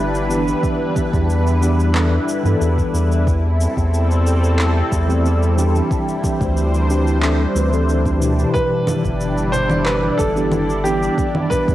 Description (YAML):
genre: sunset chillout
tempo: 91 BPM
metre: 4/4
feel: straight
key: G major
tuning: A4 = 439 Hz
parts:
  - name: lush unison pad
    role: sustained chords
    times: 0.0-11.7 s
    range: G3 to D5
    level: -22 LUFS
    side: equal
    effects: chorus, phaser, cassette tape
  - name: round analog bass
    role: bass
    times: 0.0-11.7 s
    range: G1 to G2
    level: -18 LUFS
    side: equal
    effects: none
  - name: electronic cabasa, handclaps and congas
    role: drums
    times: 0.1-11.7 s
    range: none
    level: -26 LUFS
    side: equal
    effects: overdrive
  - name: mellow tine electric piano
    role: accompaniment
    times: 0.3-11.7 s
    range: B2 to B4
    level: -22 LUFS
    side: equal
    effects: medium stereo tremolo, auto-pan, cassette tape, tape echo
  - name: electronic kick drum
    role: drums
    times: 0.6-11.7 s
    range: none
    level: -22 LUFS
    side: equal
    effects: overdrive
  - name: clear baby grand piano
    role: melody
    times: 8.5-11.7 s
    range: G4 to C5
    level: -20 LUFS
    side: right 1 dB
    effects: cassette tape, tape echo
  - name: congas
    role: percussion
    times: 8.9-11.6 s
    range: none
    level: -30 LUFS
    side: right 6 dB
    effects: none
room: light reverb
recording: home recording on cassette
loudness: -15 LUFS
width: side -14 dB against mid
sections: 0.0-11.7 A section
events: none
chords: 0.0 G6; 0.6 Em7; 3.3 C6/E; 5.9 D9sus4; 8.5 G6; 11.2 Em7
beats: | 0.63 1.29 1.95 2.61 | 3.27 3.93 4.59 5.25 | 5.91 6.57 7.22 7.88 | 8.54 9.20 9.86 10.52 | 11.18